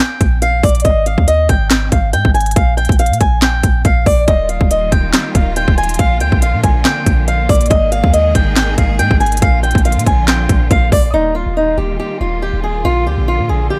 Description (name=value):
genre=hip hop, trap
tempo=140 BPM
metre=4/4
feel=half-time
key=Eb major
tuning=A4 = 440 Hz
part: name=fingerpicked swing-style acoustic guitar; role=melody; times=0.0-13.8 s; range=Eb4 to Ab5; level=-19 LUFS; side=equal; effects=none
part: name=clean 808-style bass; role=bass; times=0.2-13.7 s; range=Eb1 to Bb2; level=-18 LUFS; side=equal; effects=none
part: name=trap drum kit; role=drums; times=0.2-11.0 s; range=handclaps, hi-hat, kick drum, snare drum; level=-16 LUFS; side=equal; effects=overdrive
part: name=clear symphonic string section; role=sustained chords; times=4.3-13.8 s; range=D3 to Ab4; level=-26 LUFS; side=equal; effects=none
room=digital ambience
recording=none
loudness=-13 LUFS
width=mono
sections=0.0-11.1 A section; 11.1-13.8 B section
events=none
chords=0.0 Bb; 0.8 Ab5; 2.6 Bb5; 4.3 Ebadd9; 6.0 Bb; 7.7 Absus2; 9.4 Bb; 11.1 Ebadd9; 12.8 Bb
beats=0.42 | 0.85 1.28 1.71 2.13 | 2.56 2.99 3.42 3.85 | 4.28 4.71 5.13 5.56 | 5.99 6.42 6.85 7.28 | 7.71 8.13 8.56 8.99 | 9.42 9.85 10.28 10.71 | 11.13 11.56 11.99 12.42 | 12.85 13.28 13.71